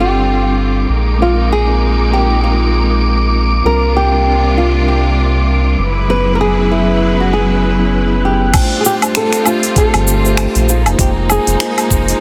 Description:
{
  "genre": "sunset chillout",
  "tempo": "98 BPM",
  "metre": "4/4",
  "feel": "swing 58% on 16ths",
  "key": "G phrygian",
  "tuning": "A4 = 440 Hz",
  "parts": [
    { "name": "nylon-string guitar", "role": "melody", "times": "0.0-12.2 s", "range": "E4 to B4", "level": "-20 LUFS", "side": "equal", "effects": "tape echo" },
    { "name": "mellow tine electric piano", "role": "accompaniment", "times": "0.0-12.2 s", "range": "F#3 to C5", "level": "-21 LUFS", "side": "equal", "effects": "tape echo" },
    { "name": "clear symphonic string section", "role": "sustained chords", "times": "0.0-12.2 s", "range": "C3 to B4", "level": "-23 LUFS", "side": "equal", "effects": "none" },
    { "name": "round analog bass", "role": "bass", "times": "0.0-12.1 s", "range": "F1 to C2", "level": "-17 LUFS", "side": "equal", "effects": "none" },
    { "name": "wind-like tuned noise texture", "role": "texture", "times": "0.0-8.6 s", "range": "D6 to F#6", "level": "-26 LUFS", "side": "equal", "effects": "built-in reverb" },
    { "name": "electronic kick drum", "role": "drums", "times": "8.5-12.0 s", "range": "none", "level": "-16 LUFS", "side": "equal", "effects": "none" },
    { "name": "smooth R&B drum kit", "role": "drums", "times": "8.5-12.2 s", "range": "cabasa, crash cymbal, finger snaps, hi-hat, woodblock", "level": "-20 LUFS", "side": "equal", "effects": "soft clipping on snare" }
  ],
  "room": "moderate lush hall reverb, RT60 2.1 s",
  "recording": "dense, heavily limited modern master",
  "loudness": "-13 LUFS",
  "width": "mono",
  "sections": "0.0-8.5 A section; 8.5-12.2 B section",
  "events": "none",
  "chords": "0.0 G9sus4; 0.9 Bb9sus4; 3.6 C9sus4; 5.8 F#9sus4; 8.5 G9sus4; 10.7 Bb9sus4",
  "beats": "0.58 | 1.19 1.80 2.42 3.03 | 3.64 4.25 4.87 5.48 | 6.09 6.70 7.31 7.93 | 8.54 9.15 9.76 10.38 | 10.99 11.60"
}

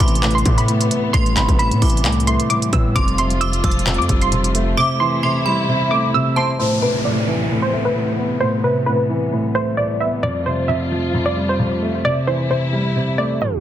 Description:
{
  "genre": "hip hop, trap",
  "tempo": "132 BPM",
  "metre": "4/4",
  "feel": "half-time",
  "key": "A minor",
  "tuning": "A4 = 440 Hz",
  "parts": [
    { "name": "warbly dusty pluck", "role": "melody", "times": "0.0-13.6 s", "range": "B4 to E6", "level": "-22 LUFS", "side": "right 1 dB", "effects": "chorus, low-pass filter, ping-pong delay" },
    { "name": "metallic FM bell", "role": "second line", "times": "0.0-6.6 s", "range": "A5 to E6", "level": "-26 LUFS", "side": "right 5 dB", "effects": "chorus, ping-pong delay" },
    { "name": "dark concert grand piano", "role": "accompaniment", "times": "0.0-13.6 s", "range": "F2 to C4", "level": "-20 LUFS", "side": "equal", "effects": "low-pass filter" },
    { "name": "warm symphonic string section", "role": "sustained chords", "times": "0.0-13.6 s", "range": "C3 to F4", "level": "-26 LUFS", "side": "left 2 dB", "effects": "low-pass filter" },
    { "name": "distorted 808-style bass", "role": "bass", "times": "0.0-4.7 s", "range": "E1 to A2", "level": "-20 LUFS", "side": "equal", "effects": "distortion" },
    { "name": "trap drum kit", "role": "drums", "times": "0.0-4.7 s", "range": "handclaps, hi-hat, kick drum", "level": "-19 LUFS", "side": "equal", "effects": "none" },
    { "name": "downlifter", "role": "sound effects", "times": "6.6-10.2 s", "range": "none", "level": "-26 LUFS", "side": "left 1 dB", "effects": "none" }
  ],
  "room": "light reverb, digital ambience",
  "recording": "dense, heavily limited modern master, tape stop",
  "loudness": "-16 LUFS",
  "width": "side -11 dB against mid",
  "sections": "0.0-6.6 A section; 6.6-13.6 B section",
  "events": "silent gap 4.8-6.6; filter sweep 6.6-13.6; tape stop 13.4",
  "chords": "0.0 Amadd9; 3.0 Fadd9; 4.8 C6; 6.6 Amadd9; 10.2 Fadd9; 12.0 C6",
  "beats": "0.23 0.68 | 1.14 1.59 2.05 2.50 | 2.96 3.41 3.87 4.32 | 4.78 5.23 5.68 6.14 | 6.59 7.05 7.50 7.96 | 8.41 8.87 9.32 9.78 | 10.23 10.68 11.14 11.59 | 12.05 12.50 12.96 13.41"
}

